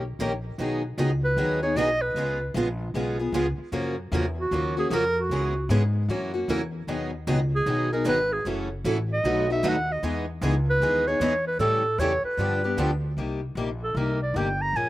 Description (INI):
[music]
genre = acoustic string swing (jazz manouche)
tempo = 152 BPM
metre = 4/4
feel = swing 64% on 8ths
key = G# minor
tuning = A4 = 438 Hz
[part]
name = clear clarinet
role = melody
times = 0.0-14.9 s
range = F#4 to Bb5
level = -25 LUFS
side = right 1 dB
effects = slapback echo
[part]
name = picked steel-string acoustic guitar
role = accompaniment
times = 0.0-14.9 s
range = B2 to Bb4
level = -30 LUFS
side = left 3 dB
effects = slapback echo
[part]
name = picked steel-string acoustic guitar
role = accompaniment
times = 0.0-12.9 s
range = B2 to B4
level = -30 LUFS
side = right 3 dB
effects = slapback echo
[part]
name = upright bass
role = bass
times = 0.0-14.9 s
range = F#1 to A2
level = -28 LUFS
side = equal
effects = none
[sound]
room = little or no reverb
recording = recorded outdoors, with no room sound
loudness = -23 LUFS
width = side -16 dB against mid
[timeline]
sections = 0.6-13.2 A section; 13.2-14.9 B section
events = clarinet solo 13.2-14.9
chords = 0.0 Eb7; 0.6 G#m7; 2.2 C#7; 3.7 F#maj7; 5.3 C#m7; 6.1 F#7; 6.9 B69; 8.5 F#m7; 9.2 B7; 10.0 Emaj7; 11.6 A7; 12.4 G7; 13.2 Cm7